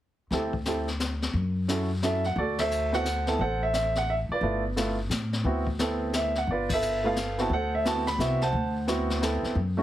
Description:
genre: jazz piano trio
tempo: 175 BPM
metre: 3/4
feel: swing 64% on 8ths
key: D mixolydian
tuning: A4 = 439 Hz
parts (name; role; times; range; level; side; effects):
- warm baby grand piano; melody; 0.3-9.8 s; A3 to B5; -27 LUFS; right 2 dB; none
- upright bass; bass; 0.3-9.8 s; G1 to A2; -30 LUFS; left 1 dB; none
- jazz brush drum kit; drums; 0.3-9.8 s; brushed snare drum, hi-hat, kick drum, ride cymbal, snare drum; -33 LUFS; left 3 dB; none
room: moderate studio reverb, RT60 0.6 s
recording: heavily compressed radio sound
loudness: -25 LUFS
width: side -13 dB against mid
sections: 0.3-2.4 A section; 2.4-9.8 B section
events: band accent 2.5, 6.6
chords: 0.3 D7sus4; 1.3 F#m7; 2.4 D9; 4.4 G13; 5.4 D13; 6.5 G13; 7.5 D13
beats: | 0.31 0.65 1.00 | 1.34 1.68 2.02 | 2.37 2.71 3.05 | 3.39 3.74 4.08 | 4.42 4.76 5.11 | 5.45 5.79 6.13 | 6.48 6.82 7.16 | 7.50 7.85 8.19 | 8.53 8.88 9.22 | 9.56

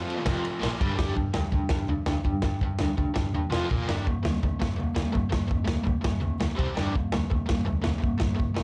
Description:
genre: garage rock duo or trio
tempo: 166 BPM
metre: 4/4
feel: straight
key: G minor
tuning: A4 = 440 Hz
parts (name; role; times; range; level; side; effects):
- biting overdriven guitar; riff; 0.0-8.6 s; F2 to Bb4; -32 LUFS; equal; tremolo
- crunchy breakbeat drum kit; drums; 0.1-8.6 s; kick drum, ride cymbal, snare drum, toms; -30 LUFS; equal; none
- dark double bass; bass; 0.3-8.6 s; F1 to Eb2; -33 LUFS; equal; none
room: light reverb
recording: cassette tape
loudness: -27 LUFS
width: mono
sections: 1.0-8.6 A section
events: none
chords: 0.0 F5; 0.6 Gm; 1.0 G5; 3.5 F5; 3.7 Bb5; 3.9 Gm; 6.6 C5; 6.8 Gm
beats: 0.25 0.61 | 0.97 1.33 1.70 2.06 | 2.42 2.78 3.15 3.51 | 3.87 4.23 4.60 4.96 | 5.32 5.68 6.05 6.41 | 6.77 7.13 7.50 7.86 | 8.22 8.58

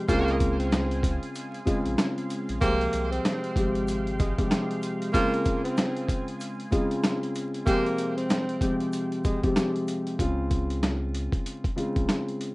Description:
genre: hip hop, boom-bap hip-hop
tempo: 95 BPM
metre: 4/4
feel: swing 60% on 16ths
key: unclear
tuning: A4 = 435 Hz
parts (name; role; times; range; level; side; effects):
- dark grand piano; accompaniment; 0.0-12.5 s; C3 to G4; -28 LUFS; left 1 dB; cassette tape
- warm analog pad; sustained chords; 0.0-10.2 s; Ab3 to C6; -40 LUFS; right 2 dB; chorus
- breathy tenor saxophone; melody; 0.1-9.4 s; Ab3 to C4; -30 LUFS; right 1 dB; digital delay
- clear horn section; stabs; 0.1-7.9 s; Ab3 to C5; -34 LUFS; right 3 dB; digital delay
- warm sub bass; bass; 0.1-4.3, 10.2-12.1 s; Ab1 to Db2; -30 LUFS; equal; none
- dusty soul sampler-style drum kit; drums; 0.1-12.5 s; hi-hat, kick drum, snare drum; -28 LUFS; equal; overdrive
- egg shaker; percussion; 0.1-10.1 s; none; -55 LUFS; right 3 dB; none
room: moderate studio reverb, RT60 0.5 s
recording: rough home demo mix, vinyl crackle, nothing above 10.9 kHz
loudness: -24 LUFS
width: side -22 dB against mid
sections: 0.0-10.2 A section; 10.2-12.5 B section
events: none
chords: 0.1 Dbmaj7; 2.6 Fmadd9; 5.1 Dbmaj7; 7.7 Fmadd9/C; 10.2 Dbmaj7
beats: | 0.09 0.72 1.35 1.98 | 2.61 3.24 3.88 4.51 | 5.14 5.77 6.40 7.03 | 7.67 8.30 8.93 9.56 | 10.19 10.82 11.46 12.09

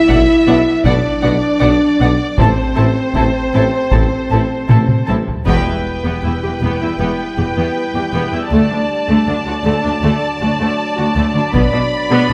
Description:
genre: cinematic, epic orchestral film score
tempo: 79 BPM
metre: 4/4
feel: straight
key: E minor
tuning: A4 = 440 Hz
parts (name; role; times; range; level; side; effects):
- warm symphonic violin section; melody; 0.0-12.3 s; C5 to B5; -25 LUFS; equal; none
- mellow French horn section; sustained chords; 0.0-12.3 s; F#3 to E4; -21 LUFS; equal; none
- rich symphonic violin section; second line; 0.1-12.3 s; A4 to A5; -25 LUFS; equal; none
- rich symphonic viola section; accompaniment; 0.1-12.3 s; A3 to G4; -24 LUFS; equal; none
- rich symphonic cello section; bass; 0.1-12.3 s; D2 to B2; -22 LUFS; equal; none
- rich symphonic double bass section; bass; 0.1-12.3 s; E1 to D2; -24 LUFS; equal; none
- warm tuba; bass; 0.1-5.2 s; A1 to B1; -25 LUFS; equal; none
- taiko ensemble; drums; 0.1-12.3 s; none; -20 LUFS; equal; none
room: moderate scoring stage reverb, RT60 1.6 s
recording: none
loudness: -15 LUFS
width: mono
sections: 0.0-5.5 A section; 5.5-12.3 B section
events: drum fill 4.7-5.5; band accent 5.5-6.2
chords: 0.0 Bm; 2.4 Am; 5.5 Em; 8.5 D; 11.5 Bm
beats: 0.10 0.85 1.61 | 2.38 3.15 3.92 4.70 | 5.47 6.24 7.00 7.75 | 8.51 9.27 10.02 10.78 | 11.54 12.29

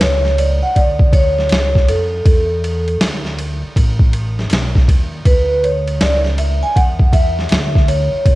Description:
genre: hip hop, jazz-hop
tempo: 80 BPM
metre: 4/4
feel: swing 65% on 16ths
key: unclear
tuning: A4 = 440 Hz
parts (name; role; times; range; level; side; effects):
- vibraphone with soft mallets; accompaniment; 0.0-8.4 s; A4 to G#5; -17 LUFS; right 1 dB; cassette tape
- upright bass; bass; 0.0-8.4 s; A1 to E#2; -18 LUFS; equal; none
- boom bap sampler-style drum kit; drums; 0.0-8.4 s; hi-hat, kick drum, ride cymbal, snare drum; -14 LUFS; equal; cassette tape
room: studio ambience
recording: home recording on cassette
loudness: -12 LUFS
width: side -18 dB against mid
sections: 0.0-8.4 A section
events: vibraphone solo 0.0-8.4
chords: 0.0 Bmadd9 (rootless); 2.3 E7sus4; 3.8 Asus2; 5.3 Dsus2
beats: 0.01 0.76 1.51 | 2.26 3.01 3.76 4.51 | 5.26 6.01 6.76 7.51 | 8.26

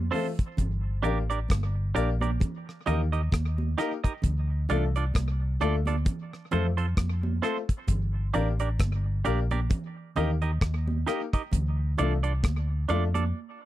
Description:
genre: roots reggae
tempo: 66 BPM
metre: 4/4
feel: swing 57% on 16ths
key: G minor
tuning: A4 = 440 Hz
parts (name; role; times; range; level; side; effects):
- vintage muted fingered electric bass; bass; 0.0-13.3 s; G1 to F2; -26 LUFS; equal; none
- semi-hollow electric guitar; accompaniment; 0.1-13.2 s; C4 to Eb5; -32 LUFS; right 7 dB; dub echo
- clear upright piano; stabs; 0.1-13.1 s; A3 to Bb4; -31 LUFS; left 8 dB; none
- damped 70s drum kit; drums; 0.1-13.3 s; hi-hat, kick drum, rim click; -27 LUFS; equal; none
- congas; percussion; 0.1-13.3 s; none; -37 LUFS; right 4 dB; none
room: little or no reverb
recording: dry, close 1970s-style studio recording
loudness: -25 LUFS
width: side -14 dB against mid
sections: 0.0-13.7 A section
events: break 13.3-13.7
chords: 0.0 F; 0.6 Gm; 2.4 Eb; 4.2 Dm; 6.1 F; 7.9 Gm; 9.7 Eb; 11.5 Dm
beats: | 0.58 1.50 2.41 3.32 | 4.23 5.14 6.06 6.97 | 7.88 8.79 9.70 10.61 | 11.52 12.44

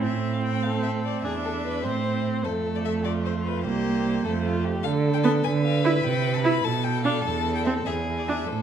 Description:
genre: quick classical-period movement for string quartet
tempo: 100 BPM (dotted quarters)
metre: 6/8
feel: straight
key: A minor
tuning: A4 = 439 Hz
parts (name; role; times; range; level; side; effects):
- clear violin; melody; 0.0-8.6 s; B4 to B5; -33 LUFS; left 10 dB; none
- clear viola; accompaniment; 0.0-8.4 s; A3 to E4; -27 LUFS; right 3 dB; none
- rich cello; bass; 0.0-8.6 s; C2 to D3; -26 LUFS; right 4 dB; none
- rich violin; second line; 0.6-8.6 s; F4 to C5; -30 LUFS; left 4 dB; none
room: wet recital hall reverb, RT60 1.7 s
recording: none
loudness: -22 LUFS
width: side -8 dB against mid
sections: 0.0-8.6 A section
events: none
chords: 0.0 Am; 1.2 E7(no3); 1.8 Am; 2.4 F; 3.6 C5; 4.2 F; 4.8 Bm7/D; 5.4 E5/D; 6.0 Cmaj7; 6.6 Bm7b5; 7.3 Am/E; 7.9 E7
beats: | 0.03 0.64 | 1.24 1.85 | 2.45 3.05 | 3.65 4.25 | 4.84 5.44 | 6.04 6.64 | 7.25 7.87 | 8.49

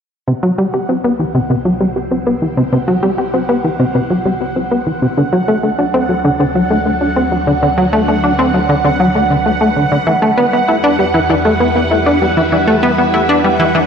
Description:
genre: ambient, sequencer-driven space music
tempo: 98 BPM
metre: 4/4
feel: straight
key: C lydian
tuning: A4 = 440 Hz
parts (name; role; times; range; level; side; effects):
- phased string machine; sustained chords; 0.3-13.9 s; F#3 to F#5; -21 LUFS; equal; ensemble chorus, phaser
- plucky analog bass; riff; 0.3-13.8 s; C3 to G4; -13 LUFS; left 1 dB; ping-pong delay
- analog drone; bass; 1.0-13.9 s; C2 to E2; -26 LUFS; equal; chorus
- bubbling stepped-filter texture; texture; 0.3-13.9 s; F#5; -20 LUFS; right 4 dB; chorus, built-in reverb
room: wet echo chamber reverb, RT60 2.4 s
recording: echo-heavy mix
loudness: -11 LUFS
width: side -7 dB against mid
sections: 0.3-13.9 A section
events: fade-in on string machine 0.3-13.9; fade-in on synth drone 0.3-13.9; filter sweep on analog synth bass 0.3-13.9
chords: 0.3 C; 5.2 D; 10.1 Emadd9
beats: | 0.28 0.89 1.50 2.12 | 2.73 3.34 3.95 4.56 | 5.18 5.79 6.40 7.01 | 7.62 8.24 8.85 9.46 | 10.07 10.69 11.30 11.91 | 12.52 13.13 13.75

